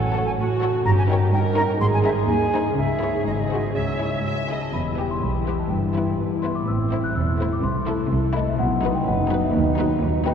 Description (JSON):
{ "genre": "cinematic, playful, whimsical film cue", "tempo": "125 BPM", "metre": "2/4", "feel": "straight", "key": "C# minor, E minor from 4.7 s", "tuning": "A4 = 440 Hz", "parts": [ { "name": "concert flute", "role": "second line", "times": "0.0-4.5 s", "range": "C#5 to B#5", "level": "-28 LUFS", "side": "equal", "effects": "none" }, { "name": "rich studio viola section", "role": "accompaniment", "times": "0.0-10.3 s", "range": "F#3 to E5", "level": "-28 LUFS", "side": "right 2 dB", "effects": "none" }, { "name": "concert harp", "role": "arpeggios", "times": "0.0-10.3 s", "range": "E2 to C#5", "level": "-27 LUFS", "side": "left 4 dB", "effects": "none" }, { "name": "rich studio cello section", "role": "bass", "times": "0.0-10.3 s", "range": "D#2 to C#3", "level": "-26 LUFS", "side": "right 2 dB", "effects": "none" }, { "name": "warm studio double bass section", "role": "bass", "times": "0.0-10.3 s", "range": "E1 to D#2", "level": "-27 LUFS", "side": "right 3 dB", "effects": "none" }, { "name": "rich studio violin section", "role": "melody", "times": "0.1-10.3 s", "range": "A4 to E5", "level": "-35 LUFS", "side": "left 4 dB", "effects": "none" }, { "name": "warm studio violin section", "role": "second line", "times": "0.1-10.3 s", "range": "D#4 to A#4", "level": "-31 LUFS", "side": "left 2 dB", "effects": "none" }, { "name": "celesta", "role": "melody", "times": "4.5-10.3 s", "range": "D#5 to F#6", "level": "-29 LUFS", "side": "left 4 dB", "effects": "none" }, { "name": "mellow French horn section", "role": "sustained chords", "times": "4.7-10.3 s", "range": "A3 to G4", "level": "-29 LUFS", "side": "left 3 dB", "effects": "none" } ], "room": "wet cathedral reverb, RT60 5.9 s", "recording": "dark, warm production", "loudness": "-20 LUFS", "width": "side -7 dB against mid", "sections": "0.0-4.7 A section; 4.7-10.3 B section", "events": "none", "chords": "0.0 F#m/A; 0.9 D#7/G; 1.8 G#; 2.8 C#m; 3.3 G#7; 3.8 C#m; 4.7 Em; 5.7 Em/G; 6.7 Am; 7.6 Am/C; 8.6 B; 9.5 B/D#", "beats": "0.38 | 0.86 1.33 | 1.81 2.29 | 2.78 3.27 | 3.76 4.25 | 4.74 5.23 | 5.71 6.19 | 6.67 7.16 | 7.64 8.12 | 8.60 9.07 | 9.55 10.03" }